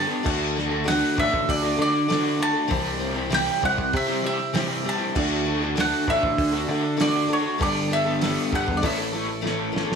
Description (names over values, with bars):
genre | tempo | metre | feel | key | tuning
folk rock and heartland rock | 98 BPM | 4/4 | straight | D major | A4 = 444 Hz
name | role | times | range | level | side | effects
bowl-back mandolin | melody | 0.0-9.7 s | C#5 to A5 | -26 LUFS | right 1 dB | none
picked steel-string acoustic guitar | accompaniment | 0.0-10.0 s | A2 to C5 | -29 LUFS | left 5 dB | none
overdriven electric guitar | riff | 0.0-10.0 s | G2 to A4 | -27 LUFS | right 1 dB | harmonic tremolo
picked electric bass | bass | 0.0-9.8 s | G1 to D3 | -28 LUFS | right 2 dB | none
damped 70s drum kit | drums | 0.3-10.0 s | crash cymbal, hi-hat, kick drum, snare drum | -30 LUFS | right 2 dB | none
room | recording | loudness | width
light reverb | small room ambience | -21 LUFS | side -6 dB against mid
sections
0.0-10.0 A section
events
drum fill 9.4-10.0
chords
0.3 D; 2.7 C; 5.2 D; 7.6 Gadd9; 8.8 A